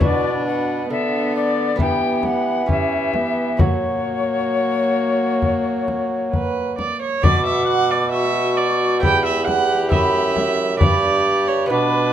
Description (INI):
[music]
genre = classical, renaissance-style consort dance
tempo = 67 BPM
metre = 4/4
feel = straight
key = B minor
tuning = A4 = 440 Hz
[part]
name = mellow soprano recorder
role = melody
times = 0.0-12.1 s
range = C#5 to D6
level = -24 LUFS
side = left 6 dB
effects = none
[part]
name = warm viola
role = second line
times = 0.0-12.1 s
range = F#4 to G5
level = -23 LUFS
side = right 6 dB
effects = none
[part]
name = lute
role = accompaniment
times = 0.0-12.1 s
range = E2 to B4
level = -28 LUFS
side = right 2 dB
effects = none
[part]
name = warm viola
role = accompaniment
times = 0.0-12.1 s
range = A#3 to G4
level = -24 LUFS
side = left 2 dB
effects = none
[part]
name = warm bassoon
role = bass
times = 0.0-12.1 s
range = E2 to F#3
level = -23 LUFS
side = right 2 dB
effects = none
[part]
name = frame drum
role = percussion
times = 0.0-11.2 s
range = none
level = -20 LUFS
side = left 2 dB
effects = none
[sound]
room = moderate recital hall reverb, RT60 1.6 s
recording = close, detailed microphones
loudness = -16 LUFS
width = side -10 dB against mid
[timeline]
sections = 0.0-7.2 A section; 7.2-12.1 A section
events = none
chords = 0.0 Bm; 1.8 Em; 3.6 F#; 7.2 Bm; 9.0 Em; 10.8 G